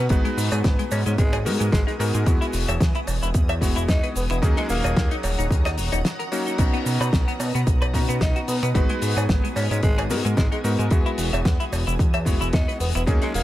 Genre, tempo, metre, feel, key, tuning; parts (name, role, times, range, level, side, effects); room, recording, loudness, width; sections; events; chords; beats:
nu-disco, nu disco; 111 BPM; 4/4; swing 55% on 16ths; A4 = 444 Hz
growling tenor saxophone; melody; 0.0-13.4 s; G#3 to D#4; -31 LUFS; equal; tape echo
clear electric grand piano; accompaniment; 0.0-13.4 s; F#3 to A#5; -28 LUFS; left 1 dB; tape echo
string machine, full ensemble; sustained chords; 0.0-13.4 s; B3 to D#6; -33 LUFS; equal; ensemble chorus, sidechain pumping
clean electric guitar; riff; 0.0-13.3 s; G#3 to E5; -31 LUFS; left 2 dB; wide subtle chorus
fat analog bass; bass; 0.0-13.4 s; D#1 to B2; -24 LUFS; equal; sidechain pumping
damped 70s drum kit; drums; 0.1-13.4 s; crash cymbal, finger snaps, hi-hat, shaker, snare drum; -28 LUFS; left 1 dB
electronic kick drum; drums; 0.1-13.2 s; -21 LUFS; equal
cowbell; percussion; 0.5-12.2 s; -33 LUFS; right 2 dB
small room reverb; -19 LUFS; side -14 dB against mid
0.0-13.4 A section
break 6.0-6.6
0.1 G#m7; 2.3 Emaj7; 4.4 D#m7; 6.6 Bmaj7; 8.8 G#m7; 10.9 Emaj7
| 0.10 0.64 1.18 1.72 | 2.27 2.81 3.35 3.89 | 4.43 4.97 5.51 6.05 | 6.59 7.13 7.67 8.21 | 8.75 9.29 9.83 10.37 | 10.91 11.45 11.99 12.54 | 13.07